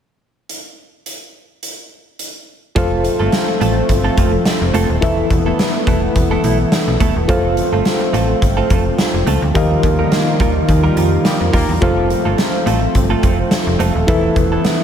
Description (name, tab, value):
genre	1980s-style pop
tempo	106 BPM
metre	4/4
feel	swing 55% on 16ths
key	unclear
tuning	A4 = 440 Hz
part	big rock drum kit	drums	0.5-14.8 s	hi-hat, kick drum, snare drum	-18 LUFS	equal	none
part	FM electric piano with auto-pan	accompaniment	2.8-14.8 s	Eb3 to F5	-20 LUFS	left 2 dB	none
part	lush unison pad	sustained chords	2.8-14.8 s	Eb3 to F4	-20 LUFS	equal	chorus
part	direct-recorded clean electric guitar	riff	2.8-14.8 s	E3 to Bb4	-22 LUFS	right 5 dB	wide subtle chorus, ping-pong delay
part	slap-like FM bass	bass	2.8-14.6 s	Eb1 to F2	-18 LUFS	equal	none
part	clear horn section	stabs	11.3-11.7 s	G3 to Bb4	-28 LUFS	left 2 dB	none
room	moderate cathedral reverb, RT60 5.9 s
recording	dreamy mix soaked in reverb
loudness	-13 LUFS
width	side -8 dB against mid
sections	0.5-2.8 A section; 2.8-14.8 B section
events	band accent 9.6-11.8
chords	0.5 N.C.; 2.8 F; 5.0 Asus2/E; 7.3 F; 9.6 Ebadd9; 11.8 F; 14.1 Asus2/E